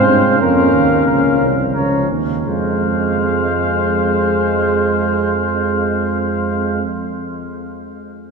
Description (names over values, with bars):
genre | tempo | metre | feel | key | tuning
classical, brass quintet | 88 BPM | 3/4 | rubato | F minor | A4 = 440 Hz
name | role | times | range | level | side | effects
clear trumpet | melody | 0.0-6.8 s | F5 to Bb5 | -22 LUFS | left 5 dB | none
clear trumpet | second line | 0.0-6.8 s | Bb4 to Db5 | -22 LUFS | right 3 dB | none
clear trombone | accompaniment | 0.0-6.8 s | F3 to Bb3 | -24 LUFS | right 2 dB | none
warm French horn | accompaniment | 0.0-6.8 s | Ab3 to Db4 | -19 LUFS | equal | none
warm tuba | bass | 0.0-6.8 s | C2 to G2 | -20 LUFS | right 4 dB | none
room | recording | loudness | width
wet cathedral reverb, RT60 5.5 s | dark, warm production | -14 LUFS | side -4 dB against mid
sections
0.0-2.5 A section; 2.5-6.5 B section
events
slowing down 0.0-2.5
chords
0.4 Bbm; 2.5 Fm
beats
| 0.41 1.07 1.75 | 2.46 3.15 3.83 | 4.51 5.18 5.87